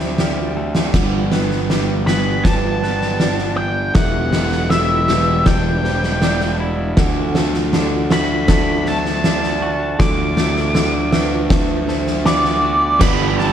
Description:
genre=post-rock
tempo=80 BPM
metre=4/4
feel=straight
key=G major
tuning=A4 = 440 Hz
part: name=octave-fuzz lead guitar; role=melody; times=0.0-13.5 s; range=D5 to D6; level=-20 LUFS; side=equal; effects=distortion, slapback echo
part: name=pedal steel guitar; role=sustained chords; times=0.0-13.5 s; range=D3 to B5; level=-29 LUFS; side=right 2 dB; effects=none
part: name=twelve-string electric guitar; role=arpeggios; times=0.0-13.5 s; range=E2 to C5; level=-28 LUFS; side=left 2 dB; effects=slapback echo
part: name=vibraphone with medium hard mallets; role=arpeggios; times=0.0-13.5 s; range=A4 to F#5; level=-28 LUFS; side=right 8 dB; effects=slapback echo
part: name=fuzz fingered electric bass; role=bass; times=0.0-13.5 s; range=E1 to D2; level=-21 LUFS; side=equal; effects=overdrive
part: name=oversized low-tuned drum kit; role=drums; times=0.0-13.5 s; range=crash cymbal, kick drum, snare drum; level=-18 LUFS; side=equal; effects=none
part: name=cranked stack guitar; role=riff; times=13.0-13.5 s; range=G3 to B4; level=-19 LUFS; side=right 13 dB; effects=overdrive
room=little or no reverb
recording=dark, warm production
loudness=-14 LUFS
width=side -9 dB against mid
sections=0.9-13.0 A section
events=none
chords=0.0 D7sus4; 0.9 Gmaj7; 4.0 Em7; 7.0 D; 10.0 Bm7/D; 13.0 Gmaj7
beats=0.19 | 0.94 1.70 2.45 3.21 | 3.96 4.72 5.47 6.22 | 6.98 7.73 8.49 9.24 | 9.99 10.75 11.50 12.26 | 13.01

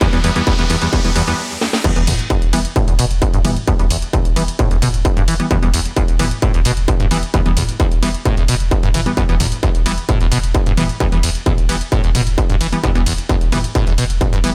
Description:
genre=driving peak-time techno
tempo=131 BPM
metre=4/4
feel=straight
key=E minor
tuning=A4 = 439 Hz
part: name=acid bass, saw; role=riff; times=0.0-14.5 s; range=E2 to E3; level=-24 LUFS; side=equal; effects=lush chorus, sidechain pumping, delay
part: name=wavetable chord stab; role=stabs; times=0.0-14.5 s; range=E3 to B3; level=-25 LUFS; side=equal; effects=sidechain pumping, delay
part: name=electronic kick drum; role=drums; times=0.0-14.3 s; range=none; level=-19 LUFS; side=equal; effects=distortion
part: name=techno drum kit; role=drums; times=0.0-14.5 s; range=crash cymbal, hi-hat, ride cymbal, snare drum, toms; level=-25 LUFS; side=equal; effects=sidechain pumping on hats, sidechain pumping on cymbals, sidechain pumping on toms
part: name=riser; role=sound effects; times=0.0-1.8 s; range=none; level=-26 LUFS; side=equal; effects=none
part: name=saturated sub bass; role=bass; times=2.0-14.5 s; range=E1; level=-24 LUFS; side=equal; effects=overdrive, sidechain pumping, low-pass filter
room=little or no reverb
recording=none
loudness=-16 LUFS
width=mono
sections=0.0-1.8 A section; 1.8-14.5 B section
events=build-up 0.0-1.8; riser 0.0-1.8; stop 1.4-1.8; drum fill 1.6; drop 1.8-14.5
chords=0.0 Em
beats=| 0.01 0.47 0.93 1.39 | 1.84 2.30 2.76 3.22 | 3.67 4.13 4.59 5.05 | 5.51 5.96 6.42 6.88 | 7.34 7.80 8.26 8.71 | 9.17 9.63 10.09 10.54 | 11.00 11.46 11.92 12.38 | 12.84 13.29 13.75 14.21

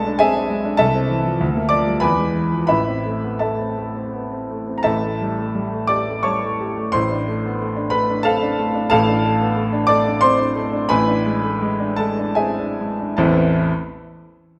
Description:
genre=classical, romantic character piece for solo piano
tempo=68-102 BPM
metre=3/4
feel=rubato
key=A minor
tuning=A4 = 440 Hz
part: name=warm grand piano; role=solo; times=0.0-13.7 s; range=A1 to D6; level=-20 LUFS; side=equal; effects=none
room=wet recital hall reverb, RT60 1.4 s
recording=none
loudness=-20 LUFS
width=mono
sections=0.0-4.9 A section; 4.9-13.2 B section; 13.2-14.6 C section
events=slowing down 7.9-13.2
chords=0.0 E7/B; 0.8 Am/C; 1.4 Bb/D; 2.0 E; 2.7 Am; 4.9 A7; 6.9 Dm/A; 10.9 E7/A; 13.2 Am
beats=0.22 | 0.81 1.41 2.04 | 2.71 3.42 4.14 | 4.86 5.56 6.26 | 6.95 7.61 8.25 | 8.91 9.56 10.22 | 10.89 11.60 12.36 | 13.18

